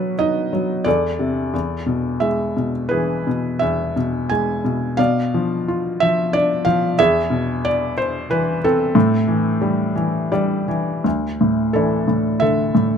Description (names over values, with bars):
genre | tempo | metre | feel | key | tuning
classical, lyrical solo piano | 82-93 BPM | 3/4 | rubato | A harmonic minor | A4 = 441 Hz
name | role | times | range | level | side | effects
felt-muted upright piano | solo | 0.0-13.0 s | D2 to G#5 | -17 LUFS | equal | none
room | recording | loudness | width
light reverb | close, detailed microphones | -17 LUFS | side -7 dB against mid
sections
0.0-11.1 A section; 11.1-13.0 B section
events
felt piano fill 10.0-11.1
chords
0.0 B; 0.9 Am/E; 1.5 E; 5.0 Bdim; 7.0 E; 9.0 Am7; 11.1 Dsus2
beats
0.19 | 0.86 1.53 2.22 | 2.92 3.62 4.31 | 4.99 5.67 6.34 | 6.99 7.63 8.29 | 8.95 9.62 10.33 | 11.05 11.75 12.42